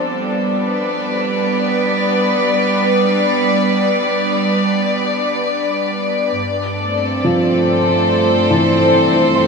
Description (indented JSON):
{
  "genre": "ambient",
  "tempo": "71 BPM",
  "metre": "4/4",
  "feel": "straight",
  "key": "G mixolydian",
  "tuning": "A4 = 439 Hz",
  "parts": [
    { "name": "clear studio string section", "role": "sustained chords", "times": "0.0-9.5 s", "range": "G2 to D5", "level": "-14 LUFS", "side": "equal", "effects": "shimmer reverb" },
    { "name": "felt-muted upright piano", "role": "arpeggios", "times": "7.2-9.5 s", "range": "E3 to C6", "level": "-16 LUFS", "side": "equal", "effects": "diffuse ambient delay, shimmer reverb" }
  ],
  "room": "wet huge ambient reverb, RT60 8.0 s",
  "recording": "none",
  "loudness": "-14 LUFS",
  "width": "side -4 dB against mid",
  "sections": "0.0-9.5 A section",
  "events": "none",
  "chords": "0.0 G; 6.4 F/G"
}